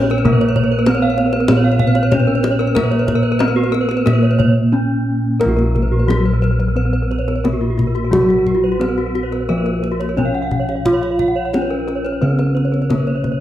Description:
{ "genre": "Balinese gamelan", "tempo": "88-99 BPM", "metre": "4/4", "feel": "straight", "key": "Bb pelog", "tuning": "A4 = 440 Hz", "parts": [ { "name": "gamelan-type bronze metallophone", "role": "melody", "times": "0.0-13.4 s", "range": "Gb3 to F4", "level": "-20 LUFS", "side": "equal", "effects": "none" }, { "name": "gamelan-type bronze metallophone", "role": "accompaniment", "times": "0.0-5.4 s", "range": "Bb3 to Cb4+35c", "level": "-23 LUFS", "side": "right 3 dB", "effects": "none" }, { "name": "gamelan-type bronze metallophone", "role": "arpeggios", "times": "0.0-13.3 s", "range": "F4 to Gb5", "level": "-23 LUFS", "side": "left 5 dB", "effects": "none" }, { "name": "gamelan-type bronze metallophone", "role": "arpeggios", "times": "0.0-13.4 s", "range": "Gb4 to F5", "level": "-24 LUFS", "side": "right 5 dB", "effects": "none" }, { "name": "gamelan-type bossed gongs", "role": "bass", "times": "0.0-13.4 s", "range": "Bb1 to Bb4", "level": "-17 LUFS", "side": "equal", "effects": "none" }, { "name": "kendang", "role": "percussion", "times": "0.1-13.4 s", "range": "none", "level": "-22 LUFS", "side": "left 2 dB", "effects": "none" } ], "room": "moderate recital hall reverb, RT60 1.3 s", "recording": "dark, warm production", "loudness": "-14 LUFS", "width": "side -12 dB against mid", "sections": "0.0-5.4 A section; 5.4-13.4 B section", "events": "none", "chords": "none", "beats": "| 0.25 0.86 1.49 2.12 | 2.75 3.40 4.06 4.72 | 5.40 6.08 6.77 7.45 | 8.13 8.81 9.49 10.18 | 10.86 11.54 12.22 12.90" }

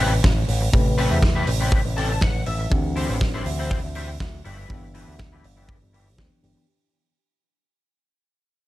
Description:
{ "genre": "nu-disco, nu disco", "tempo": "121 BPM", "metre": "4/4", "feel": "straight", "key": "unclear", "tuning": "A4 = 439 Hz", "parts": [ { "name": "mellow reed electric piano", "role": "accompaniment", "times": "0.0-6.7 s", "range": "C3 to B4", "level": "-28 LUFS", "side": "equal", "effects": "spring reverb, low-pass filter" }, { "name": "electric guitar at the edge of break-up", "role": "riff", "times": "0.0-6.6 s", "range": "C4 to A5", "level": "-28 LUFS", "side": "left 3 dB", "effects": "ensemble chorus, low-pass filter, analog delay" }, { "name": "picked electric bass with an envelope filter", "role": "bass", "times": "0.0-6.5 s", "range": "G1 to E2", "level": "-25 LUFS", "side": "equal", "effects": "tube saturation" }, { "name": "big rock drum kit", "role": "drums", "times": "0.2-6.5 s", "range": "hi-hat, snare drum", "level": "-30 LUFS", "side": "right 2 dB", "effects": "none" }, { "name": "kick drum", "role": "drums", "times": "0.2-6.3 s", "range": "none", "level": "-22 LUFS", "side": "equal", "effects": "none" } ], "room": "small room ambience", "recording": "none", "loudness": "-19 LUFS", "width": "side -16 dB against mid", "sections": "0.0-6.7 A section", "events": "fade-out 0.0-6.7; filter sweep on reed electric piano 0.0-6.7; clean electric guitar fill 1.7-2.7", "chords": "0.0 Am9; 2.7 D9sus4; 4.4 G6", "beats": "0.23 | 0.73 1.23 1.72 2.22 | 2.71 3.21 3.71 4.20 | 4.70 5.19 5.69 6.18" }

